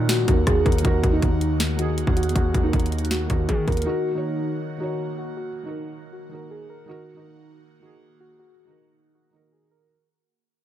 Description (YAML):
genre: hip hop, trap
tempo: 159 BPM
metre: 4/4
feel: half-time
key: Eb minor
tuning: A4 = 440 Hz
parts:
  - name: muted felt-like synth keys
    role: melody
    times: 0.0-9.9 s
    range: Eb4 to Bb4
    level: -28 LUFS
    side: equal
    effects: chorus, low-pass filter, tape echo
  - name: felt-muted upright piano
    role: accompaniment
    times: 0.0-9.9 s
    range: Eb3 to Db5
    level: -30 LUFS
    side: right 5 dB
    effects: low-pass filter
  - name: airy breathy pad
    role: sustained chords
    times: 0.0-9.9 s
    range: Eb3 to Gb4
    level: -32 LUFS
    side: left 1 dB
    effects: chorus, phaser
  - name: distorted 808-style bass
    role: bass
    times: 0.0-3.9 s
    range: Eb2 to Eb3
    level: -24 LUFS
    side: equal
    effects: distortion
  - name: downlifter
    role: sound effects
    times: 0.0-0.8 s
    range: none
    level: barely audible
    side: none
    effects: none
  - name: trap drum kit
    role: drums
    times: 0.1-3.9 s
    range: hi-hat, kick drum, rim click, snare drum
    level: -23 LUFS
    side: equal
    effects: none
room: little or no reverb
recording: none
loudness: -20 LUFS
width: side -12 dB against mid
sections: 0.0-9.9 A section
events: fade-out 0.0-9.9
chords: 0.0 Ebm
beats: 0.09 0.47 | 0.85 1.22 1.60 1.98 | 2.35 2.73 3.11 3.49 | 3.87 4.24 4.62 5.00 | 5.37 5.75 6.13 6.51 | 6.88 7.26 7.64 8.02 | 8.39 8.77 9.15 9.53